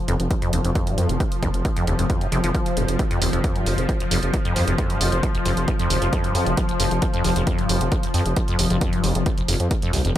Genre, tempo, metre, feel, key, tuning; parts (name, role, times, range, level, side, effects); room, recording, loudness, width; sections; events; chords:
driving peak-time techno; 134 BPM; 4/4; straight; A4 = 441 Hz
swarming drone; drone; 0.0-10.2 s; F3; -26 LUFS; left 2 dB; built-in reverb, sidechain pumping
acid bass, saw; riff; 0.1-10.2 s; F1 to F3; -26 LUFS; equal; lush chorus, cassette tape, sidechain pumping, tape echo
gritty driven synth bass; bass; 0.1-10.1 s; F1 to F2; -23 LUFS; equal; sidechain pumping
electronic hi-hat; drums; 0.1-10.2 s; -29 LUFS; right 2 dB
electronic kick drum; drums; 0.3-10.2 s; -24 LUFS; equal
light reverb; -19 LUFS; side -12 dB against mid
0.0-10.2 A section